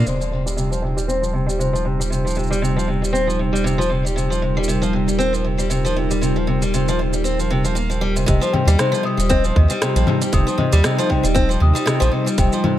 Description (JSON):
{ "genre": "folktronica", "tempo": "117 BPM", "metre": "4/4", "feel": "swing 56% on 16ths", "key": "Eb major", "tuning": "A4 = 440 Hz", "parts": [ { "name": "celesta", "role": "second line", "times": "0.0-0.1, 8.3-12.8 s", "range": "Eb4 to Eb6", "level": "-27 LUFS", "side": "left 3 dB", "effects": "vintage 12-bit sampler grit, ping-pong delay" }, { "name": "warbly tape-like pad", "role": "sustained chords", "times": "0.0-12.8 s", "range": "G3 to C5", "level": "-25 LUFS", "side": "equal", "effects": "chorus, built-in reverb" }, { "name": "picked acoustic archtop guitar", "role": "arpeggios", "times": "0.0-12.8 s", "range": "C3 to C4", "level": "-20 LUFS", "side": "left 1 dB", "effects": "low-pass filter, ping-pong delay" }, { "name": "warm sub bass", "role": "bass", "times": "0.0-12.5 s", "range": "Eb1 to Eb2", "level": "-21 LUFS", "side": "equal", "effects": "none" }, { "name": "organic electronic drum kit", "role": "drums", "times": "0.1-12.8 s", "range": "congas, hi-hat, rim click, shaker", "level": "-26 LUFS", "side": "left 1 dB", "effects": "none" }, { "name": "electronic kick drum", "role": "drums", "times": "8.3-12.5 s", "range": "none", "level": "-19 LUFS", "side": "equal", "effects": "none" } ], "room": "light reverb", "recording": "none", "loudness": "-16 LUFS", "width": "side -12 dB against mid", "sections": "0.1-8.3 A section; 8.3-12.8 B section", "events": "filter sweep on steel-string acoustic guitar 0.1-8.3", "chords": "0.1 Eb69" }